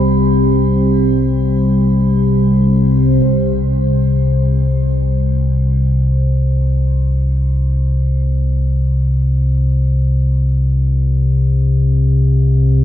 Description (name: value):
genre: dark ambient drone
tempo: free time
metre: none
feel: none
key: unclear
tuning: A4 = 444 Hz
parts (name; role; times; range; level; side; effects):
- deep dark ambient pad; sustained chords; 0.0-3.2 s; G3 to C5; -17 LUFS; equal; chorus, built-in reverb, shimmer reverb
- deep rumbling drone; drone; 0.0-12.8 s; C2 to C3; -13 LUFS; left 1 dB; built-in reverb
- bronze singing bowl; texture; 0.0-12.8 s; C5 to B5; -32 LUFS; right 5 dB; shimmer reverb
room: wet cathedral reverb, RT60 5.5 s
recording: nothing above 7.5 kHz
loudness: -12 LUFS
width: side -11 dB against mid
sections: 0.0-3.2 A section; 3.2-12.8 B section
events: fade-in on singing bowl 3.2-12.8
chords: 0.0 C5; 3.2 N.C.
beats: free time